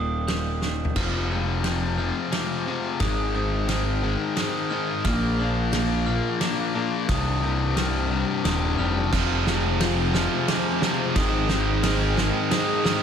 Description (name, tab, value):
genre	post-rock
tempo	88 BPM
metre	3/4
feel	straight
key	unclear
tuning	A4 = 438 Hz
part	warbly tape-like pad	sustained chords	0.0-13.0 s	Eb3 to Ab5	-36 LUFS	equal	chorus, built-in reverb
part	clean electric guitar	arpeggios	0.0-13.0 s	C2 to F4	-32 LUFS	equal	digital delay
part	glockenspiel with brass mallets	arpeggios	0.0-13.0 s	D6 to G6	-32 LUFS	right 5 dB	digital delay, slapback echo
part	fuzz picked electric bass	bass	0.0-12.3 s	Eb1 to C2	-26 LUFS	equal	overdrive
part	loose indie drum kit	drums	0.3-13.0 s	crash cymbal, kick drum, ride cymbal, snare drum, toms	-29 LUFS	right 1 dB	none
part	distorted electric guitar	riff	1.0-13.0 s	C2 to Bb3	-26 LUFS	left 6 dB	distortion
part	distorted electric guitar	riff	9.1-13.0 s	F2 to Ab3	-27 LUFS	right 10 dB	overdrive
room	moderate lush hall reverb, RT60 2.5 s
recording	big arena sound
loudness	-21 LUFS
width	side -8 dB against mid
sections	1.0-13.0 A section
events	drum fill 0.6-1.0, 1.0-13.0; build-up 1.0-13.0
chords	0.0 Eb6; 1.0 Fm; 3.0 Abmaj7; 5.1 Bb7; 7.1 Cm; 9.1 Fm; 11.2 Abmaj7